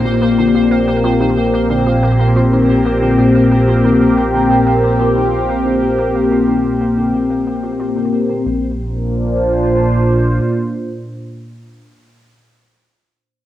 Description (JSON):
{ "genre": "ambient, sequencer-driven space music", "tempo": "91 BPM", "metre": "4/4", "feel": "straight", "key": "Bb major", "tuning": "A4 = 440 Hz", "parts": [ { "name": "phased analog pad", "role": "sustained chords", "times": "0.0-11.9 s", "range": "Bb2 to C5", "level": "-12 LUFS", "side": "left 1 dB", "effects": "phaser, chorus, cassette tape, plate reverb" }, { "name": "analog pluck", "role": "riff", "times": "0.0-8.8 s", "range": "Bb2 to Bb3", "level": "-26 LUFS", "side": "equal", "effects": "chorus, cassette tape, ping-pong delay" }, { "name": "round analog bass", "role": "bass", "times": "0.0-10.4 s", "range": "Bb1", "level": "-24 LUFS", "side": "right 1 dB", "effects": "tube saturation" }, { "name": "pulsing gated texture", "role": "texture", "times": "0.0-8.5 s", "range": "C5", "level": "-27 LUFS", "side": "right 2 dB", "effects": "chorus, built-in reverb, cassette tape" } ], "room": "wet booth ambience, RT60 0.2 s", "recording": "home recording on cassette", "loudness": "-12 LUFS", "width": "side -13 dB against mid", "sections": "0.0-8.5 A section; 8.5-11.1 B section", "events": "fade-out on synth arpeggio sound 0.0-8.5", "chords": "0.0 Bbadd9" }